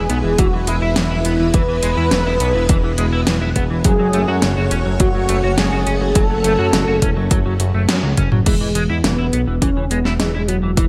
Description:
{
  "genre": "synthwave",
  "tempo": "104 BPM",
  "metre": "4/4",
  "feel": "straight",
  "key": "E major",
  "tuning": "A4 = 440 Hz",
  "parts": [
    { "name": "unison lead", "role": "melody", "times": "0.0-10.9 s", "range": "E3 to B4", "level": "-23 LUFS", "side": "equal", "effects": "digital delay" },
    { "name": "string machine, full ensemble", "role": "sustained chords", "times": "0.0-8.4 s", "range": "G#3 to C#5", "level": "-28 LUFS", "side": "equal", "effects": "ensemble chorus, sidechain pumping" },
    { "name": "clean electric guitar", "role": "riff", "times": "0.0-10.8 s", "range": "E3 to F#4", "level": "-27 LUFS", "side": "equal", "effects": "analog chorus, digital delay" },
    { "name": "fat analog bass", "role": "bass", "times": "0.0-10.9 s", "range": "E1 to F#2", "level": "-22 LUFS", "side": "equal", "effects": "tube saturation" },
    { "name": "pop drum kit", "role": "drums", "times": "0.1-10.9 s", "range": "crash cymbal, hi-hat, snare drum, toms", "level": "-22 LUFS", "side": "equal", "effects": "overdrive, gated reverb" },
    { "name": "electronic kick drum", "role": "drums", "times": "0.4-10.9 s", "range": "none", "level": "-19 LUFS", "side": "equal", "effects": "overdrive" }
  ],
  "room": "little or no reverb",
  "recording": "none",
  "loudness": "-17 LUFS",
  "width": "mono",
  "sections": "0.0-8.5 A section; 8.5-10.9 B section",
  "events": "band accent 7.9; drum fill 8.2",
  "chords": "0.0 E; 3.9 F#m; 8.5 E"
}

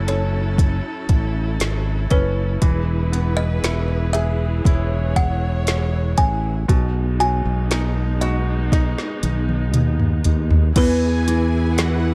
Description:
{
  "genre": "pop ballad",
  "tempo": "59 BPM",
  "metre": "4/4",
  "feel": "straight",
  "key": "E major",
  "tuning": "A4 = 440 Hz",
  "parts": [
    { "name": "kalimba", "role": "melody", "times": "0.0-12.1 s", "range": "B3 to G#5", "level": "-27 LUFS", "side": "equal", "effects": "none" },
    { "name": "bright grand piano", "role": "accompaniment", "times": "0.0-12.1 s", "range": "B2 to A4", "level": "-31 LUFS", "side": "equal", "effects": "none" },
    { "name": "rich chamber string section", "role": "sustained chords", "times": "0.0-12.1 s", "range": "E3 to C#5", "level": "-31 LUFS", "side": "equal", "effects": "none" },
    { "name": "modern bright fingered electric bass", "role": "bass", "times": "0.0-12.1 s", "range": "E1 to E2", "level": "-23 LUFS", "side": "equal", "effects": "none" },
    { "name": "smooth R&B drum kit", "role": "drums", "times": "0.1-12.0 s", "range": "crash cymbal, hi-hat, kick drum, snare drum, toms", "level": "-22 LUFS", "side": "equal", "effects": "none" },
    { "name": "warm symphonic violin section", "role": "second line", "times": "10.8-12.1 s", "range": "F#5 to G#5", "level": "-33 LUFS", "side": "equal", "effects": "none" }
  ],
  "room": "studio reverb",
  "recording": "dark, warm production",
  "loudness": "-20 LUFS",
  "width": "mono",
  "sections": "0.0-10.8 A section; 10.8-12.1 B section",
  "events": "drum fill 8.7-10.8",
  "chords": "0.0 F#m7; 2.6 E; 6.7 B6; 10.8 E"
}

